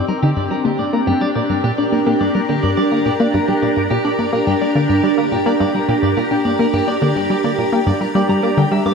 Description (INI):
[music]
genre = ambient, sequencer-driven space music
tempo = 106 BPM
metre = 4/4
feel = straight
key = G minor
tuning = A4 = 440 Hz
[part]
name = evolving wavetable pad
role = sustained chords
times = 0.0-8.9 s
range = C4 to G5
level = -18 LUFS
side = right 1 dB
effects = ensemble chorus, built-in reverb, phaser
[part]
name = clean electric guitar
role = arpeggios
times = 0.0-8.9 s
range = G4 to D6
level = -22 LUFS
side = left 1 dB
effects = auto-pan, tape echo
[part]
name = tight sequenced synth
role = riff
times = 0.1-8.9 s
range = G2 to D4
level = -18 LUFS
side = left 1 dB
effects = chorus, cassette tape, tape echo
[sound]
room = wet lush hall reverb, RT60 2.6 s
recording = dreamy mix soaked in reverb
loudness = -14 LUFS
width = side -5 dB against mid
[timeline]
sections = 0.0-8.9 A section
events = none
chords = 0.0 Gm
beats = 0.51 1.08 1.64 | 2.21 2.77 3.34 3.91 | 4.47 5.04 5.61 6.17 | 6.74 7.30 7.87 8.44